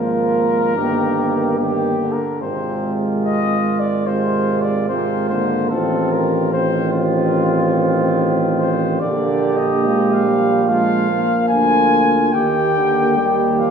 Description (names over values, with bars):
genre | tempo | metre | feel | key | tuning
classical, brass quintet | 72 BPM | 4/4 | rubato | unclear | A4 = 440 Hz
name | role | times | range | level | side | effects
mellow cornet | melody | 0.0-13.7 s | F4 to Ab5 | -21 LUFS | left 5 dB | none
dark trumpet | second line | 0.0-13.7 s | F4 to G4 | -23 LUFS | right 5 dB | none
brilliant trombone | accompaniment | 0.0-13.7 s | C3 to F3 | -25 LUFS | right 3 dB | none
mellow French horn | accompaniment | 0.0-13.7 s | G3 to C4 | -22 LUFS | left 2 dB | none
clear tuba | bass | 0.0-13.7 s | G1 to Eb2 | -21 LUFS | right 3 dB | none
room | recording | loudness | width
wet recital hall reverb, RT60 1.4 s | recorded in a church or concert hall | -15 LUFS | side -6 dB against mid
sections
0.0-13.7 A section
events
none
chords
0.0 Bb5/Ab; 0.8 Eb/G; 2.4 Fm/Ab; 5.7 F7/A; 9.0 Bb; 12.3 Eb